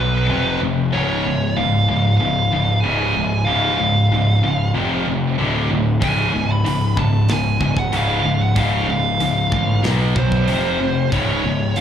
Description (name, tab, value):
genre	heavy metal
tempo	94 BPM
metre	4/4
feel	straight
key	unclear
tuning	A4 = 442 Hz
part	high-gain lead guitar	melody	0.0-11.8 s	B4 to B5	-22 LUFS	right 2 dB	distortion
part	heavy high-gain guitar	riff	0.0-11.8 s	C#2 to B3	-21 LUFS	left 5 dB	distortion, slapback echo
part	scooped high-gain guitar	riff	0.0-11.8 s	C#2 to B3	-24 LUFS	right 7 dB	distortion
part	fuzz picked electric bass	bass	0.0-11.8 s	C#1 to B1	-21 LUFS	right 1 dB	overdrive
part	tight metal drum kit	drums	6.0-11.8 s	hi-hat, kick drum, snare drum	-25 LUFS	equal	none
room	studio ambience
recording	live gig heard through the venue's PA, club reverb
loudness	-16 LUFS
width	side -9 dB against mid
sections	0.0-11.8 A section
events	none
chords	0.3 F5; 0.9 C#; 4.8 F5; 5.4 D5; 6.0 C#; 9.8 B5; 10.5 F5; 11.1 C#5